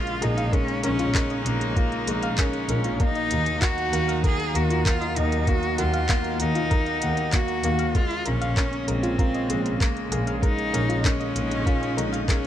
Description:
piano and strings electronica; 97 BPM; 4/4; straight; Bb minor; A4 = 440 Hz
warm cello; melody; 0.0-12.5 s; Bb3 to Ab4; -28 LUFS; equal
rich string quartet; sustained chords; 0.0-12.5 s; Db3 to F4; -33 LUFS; right 2 dB; sidechain pumping
clear upright piano; riff; 0.0-12.5 s; Ab3 to Gb5; -29 LUFS; left 2 dB; tape echo
organic electronic drum kit; drums; 0.1-12.5 s; handclaps, hi-hat; -31 LUFS; equal
soft round pluck; arpeggios; 0.2-12.3 s; F4 to F5; -34 LUFS; left 1 dB; chorus, sidechain pumping, tape echo
warm symphonic double bass section; bass; 0.2-12.2 s; Bb1 to Eb2; -28 LUFS; equal; tube saturation, sidechain pumping
electronic kick drum; drums; 0.5-12.4 s; -22 LUFS; equal; overdrive
light reverb; -21 LUFS; side -11 dB against mid
0.0-12.5 A section
0.0 Bbm7; 3.0 Ebm; 8.0 Bbm7

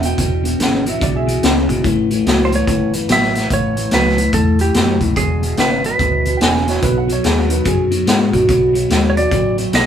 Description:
electric blues shuffle; 144 BPM; 4/4; swing 63% on 8ths; E mixolydian; A4 = 440 Hz
warm upright piano; second line; 0.0-2.0, 6.4-8.6 s; F4 to G#5; -25 LUFS; right 5 dB
electric guitar through a small old amp; riff; 0.0-9.9 s; E2 to G#3; -17 LUFS; left 1 dB; phaser
fingered electric bass; bass; 0.0-9.9 s; E1 to A2; -21 LUFS; equal
raw garage drum kit; drums; 0.0-9.9 s; hi-hat, kick drum, snare drum; -18 LUFS; equal
clean lap steel guitar; melody; 2.5-6.4, 9.1-9.9 s; G4 to E5; -19 LUFS; right 2 dB
moderate studio reverb, RT60 0.5 s; band playing live in one room; -13 LUFS; side -9 dB against mid
0.0-9.9 A section
0.0 E; 1.8 A; 5.2 E7; 6.8 B7

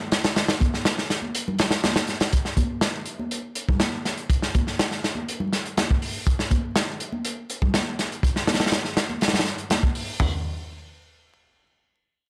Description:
breakbeat; 122 BPM; 4/4; straight
crunchy breakbeat drum kit; drums; 0.1-10.3 s; crash cymbal, hi-hat, kick drum, snare drum, toms; -25 LUFS; equal
congas; percussion; 0.6-9.8 s; -34 LUFS; equal
little or no reverb; vinyl crackle; -24 LUFS; mono
0.0-2.3 A section; 2.3-10.2 B section; 10.2-12.2 C section
drop 0.0-2.3; kick drops out 1.3-2.3

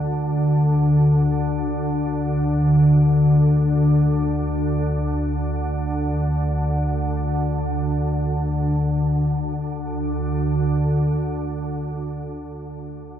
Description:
ambient; free time; A4 = 442 Hz
organ-like drone; solo; 0.0-12.0 s; D2 to D3; -19 LUFS; equal; ensemble chorus, built-in reverb, diffuse ambient delay
wet huge ambient reverb, RT60 7.4 s; dark, warm production; -18 LUFS; side -10 dB against mid
0.0-8.9 A section; 8.9-12.5 B section

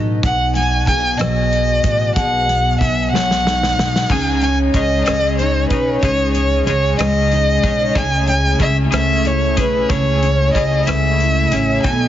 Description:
six-eight pop ballad; 62 BPM (dotted quarters); 6/8; straight; A4 = 437 Hz
picked steel-string acoustic guitar; accompaniment; 0.0-12.1 s; B2 to A4; -20 LUFS; equal; double-tracked left and right
upright bass; bass; 0.0-12.1 s; A1 to C#2; -20 LUFS; equal
rich violin; melody; 0.2-12.1 s; B4 to G#5; -18 LUFS; equal
natural country drum kit; drums; 0.2-12.0 s; hi-hat, kick drum, rim click, snare drum, splash cymbal; -22 LUFS; equal
twelve-string electric guitar; arpeggios; 4.1-12.1 s; B2 to A4; -25 LUFS; left 4 dB; tremolo
chorused pulse-width pad; sustained chords; 11.8-12.1 s; B3 to D#5; -19 LUFS; right 4 dB
light reverb, small room ambience; heavily compressed radio sound, nothing above 7.5 kHz; -14 LUFS; side -12 dB against mid
0.0-12.1 A section
drum fill 3.1-4.1
0.2 G#m7; 4.1 C#sus2; 8.0 Amaj7

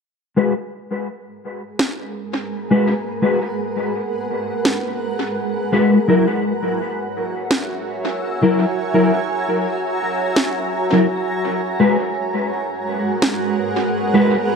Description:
ambient dub; 84 BPM; 4/4; swing 56% on 16ths; G# minor; A4 = 440 Hz
granular cloud pad; sustained chords; 1.7-14.6 s; G#3 to A#5; -22 LUFS; right 2 dB; built-in reverb
mellow electric guitar; stabs; 0.4-14.4 s; F#3 to B4; -18 LUFS; left 2 dB; ensemble chorus, low-pass filter, dub echo
electronic snare drum; drums; 1.8-13.4 s; -23 LUFS; right 1 dB; studio reverb, dub echo
moderate plate reverb, RT60 2.0 s, digital ambience; echo-heavy mix; -17 LUFS; side -5 dB against mid
0.4-14.6 A section
fade-in on ambient pad 0.4-14.6
0.4 G#m7; 6.1 F#7; 11.8 G#m7

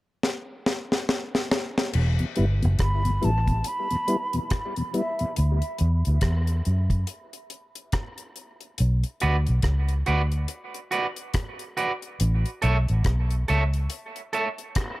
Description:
dub reggae; 70 BPM; 4/4; swing 60% on 16ths; E dorian; A4 = 441 Hz
deep reggae drum kit; drums; 0.2-15.0 s; crash cymbal, hi-hat, kick drum, rim click, snare drum; -27 LUFS; equal
vintage muted fingered electric bass; bass; 2.0-13.9 s; E1 to F#2; -22 LUFS; equal
mellow tonewheel organ; accompaniment; 2.2-5.3 s; E2 to E4; -29 LUFS; left 2 dB; chorus vibrato, slow rotary speaker, dub echo
mellow hollow silver concert flute; melody; 2.8-5.3 s; E5 to B5; -30 LUFS; right 1 dB; dub echo
electric guitar at the edge of break-up; accompaniment; 9.2-14.5 s; F#4 to E5; -28 LUFS; right 3 dB; dub echo
light reverb, studio reverb; -22 LUFS; side -18 dB against mid
0.0-1.9 A section; 1.9-15.0 B section
drum fill 0.2-1.9
0.0 N.C.; 1.9 Em; 5.4 D; 8.8 Bm; 12.2 A

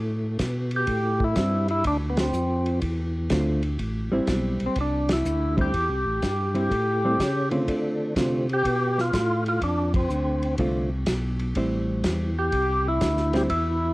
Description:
soul jazz organ trio; 124 BPM; 4/4; swing 67% on 8ths; A minor; A4 = 440 Hz
tonewheel organ; bass; 0.0-13.9 s; A1 to D3; -26 LUFS; equal; overdrive, chorus vibrato, slow rotary speaker
warm soul drum kit; drums; 0.4-13.6 s; hi-hat, kick drum, ride cymbal, snare drum; -31 LUFS; equal; cassette tape
percussive tonewheel organ; melody; 0.8-13.9 s; B3 to G4; -25 LUFS; equal; slow rotary speaker
hollow-body jazz guitar; accompaniment; 1.4-13.5 s; D3 to F4; -26 LUFS; right 1 dB; cassette tape
light reverb; home recording on cassette; -22 LUFS; side -20 dB against mid
0.0-13.9 A section
band accent 2.1, 5.0, 9.9
0.0 Am7; 1.9 Dm7; 3.8 Am7; 7.7 Dm7; 11.6 Am7

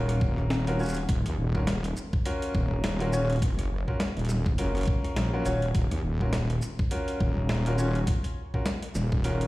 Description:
glitch hop; 103 BPM; 4/4; swing 58% on 16ths; Eb minor; A4 = 441 Hz
bright concert grand piano; stabs; 0.0-9.5 s; Db4 to Db5; -33 LUFS; left 1 dB; sidechain pumping, ping-pong delay
wobble bass; bass; 0.0-9.5 s; Eb1 to Eb2; -27 LUFS; equal; chorus
boom bap sampler-style drum kit; drums; 0.1-9.5 s; hi-hat, rim click, shaker, snare drum; -34 LUFS; equal
electronic kick drum; drums; 0.2-9.2 s; -27 LUFS; equal; overdrive
little or no reverb; played on a big sound system in a bare room, large studio reverb, vinyl crackle; -25 LUFS; side -18 dB against mid
0.0-9.5 A section
0.0 Ebm7

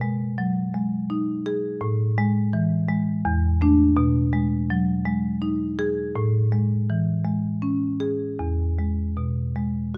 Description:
classical, contemporary piece for solo marimba; 82 BPM; 3/4; rubato; A4 = 440 Hz
marimba with medium mallets; solo; 0.0-10.0 s; E2 to G#4; -24 LUFS; equal
light reverb; close, detailed microphones; -24 LUFS; mono
0.0-10.0 A section
0.0 B6; 1.8 A5; 3.3 E7sus4; 4.0 B6; 6.2 Amaj7; 8.4 E

